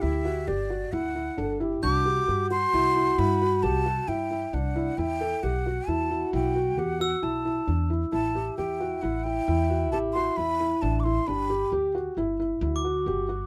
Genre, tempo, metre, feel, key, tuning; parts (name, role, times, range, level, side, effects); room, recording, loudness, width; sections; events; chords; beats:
contemporary instrumental, chamber music in an uneven meter; 134 BPM; 7/4; straight; A4 = 440 Hz
breathy jazz flute; melody; 0.0-11.7 s; D5 to D6; -32 LUFS; equal
mellow French horn; second line; 0.0-13.5 s; D4 to A4; -33 LUFS; equal
felt-muted upright piano; arpeggios; 0.0-13.5 s; D4 to A4; -32 LUFS; equal
upright bass; bass; 0.0-13.4 s; G1 to G2; -32 LUFS; equal
glockenspiel with brass mallets; texture; 1.8-13.5 s; D6 to G6; -39 LUFS; equal
little or no reverb; close, detailed microphones; -26 LUFS; mono
0.0-13.5 A section
0.0 G5; 1.8 Cadd9; 5.0 Esus2; 8.1 A5; 11.3 Gmaj7
0.03 0.48 0.93 1.38 | 1.83 2.28 2.73 3.19 3.64 4.09 4.54 | 4.99 5.44 5.89 6.34 6.79 7.24 7.68 | 8.13 8.58 9.03 9.48 9.93 10.38 10.83 | 11.27 11.72 12.17 12.62 13.06